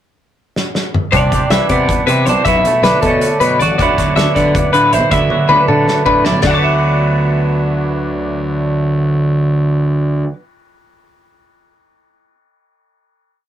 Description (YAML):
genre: math rock and midwest emo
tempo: 317 BPM (eighths)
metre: 7/8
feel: straight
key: D mixolydian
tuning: A4 = 440 Hz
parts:
  - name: loose indie drum kit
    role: drums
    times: 0.6-6.5 s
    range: hi-hat, kick drum, ride cymbal, snare drum, toms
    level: -20 LUFS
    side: equal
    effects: none
  - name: twelve-string electric guitar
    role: accompaniment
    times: 1.1-10.5 s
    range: D2 to F#4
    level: -15 LUFS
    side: right 4 dB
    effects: none
  - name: twelve-string electric guitar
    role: arpeggios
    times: 1.1-10.3 s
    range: A4 to D6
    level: -15 LUFS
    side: left 4 dB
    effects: none
  - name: fuzz picked electric bass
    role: bass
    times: 1.1-10.2 s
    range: A1 to D3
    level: -17 LUFS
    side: equal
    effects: overdrive
room: light reverb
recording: rough rehearsal-room recording, tube saturation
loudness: -11 LUFS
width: side -10 dB against mid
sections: 0.0-1.1 pickup bar; 1.1-6.4 A section; 6.4-9.1 final chord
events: drum fill 0.6-1.1, 5.3-6.4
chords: 0.0 N.C.; 1.1 Cmaj9; 2.5 Bm11; 3.8 D69